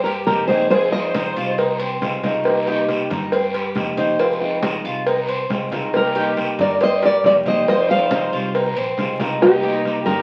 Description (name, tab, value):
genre	latin, Cuban son and guajira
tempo	138 BPM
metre	4/4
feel	straight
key	C minor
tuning	A4 = 439 Hz
part	nylon-string guitar	melody	0.0-1.8, 6.0-10.2 s	G4 to F5	-20 LUFS	equal	none
part	warm studio violin section	second line	0.0-1.8, 5.9-10.2 s	Eb4 to C5	-29 LUFS	equal	none
part	Cuban tres	arpeggios	0.0-10.2 s	C4 to G4	-30 LUFS	equal	none
part	upright bass	bass	0.0-10.2 s	Bb1 to G2	-34 LUFS	equal	none
part	congas	percussion	0.1-10.2 s	none	-30 LUFS	equal	none
part	cowbell	percussion	0.1-10.2 s	none	-26 LUFS	equal	none
part	flamenco guitar	accompaniment	0.3-10.2 s	C3 to G4	-26 LUFS	equal	none
part	guiro	percussion	0.3-10.2 s	none	-33 LUFS	equal	none
room	wet studio reverb, RT60 0.7 s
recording	very old 78 rpm record, vinyl crackle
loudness	-19 LUFS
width	mono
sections	0.0-10.2 A section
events	none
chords	0.0 Cm7; 0.7 Fm7; 2.5 Cm7; 4.2 Fm7; 5.9 Cm7; 7.7 Fm7; 9.4 Cm7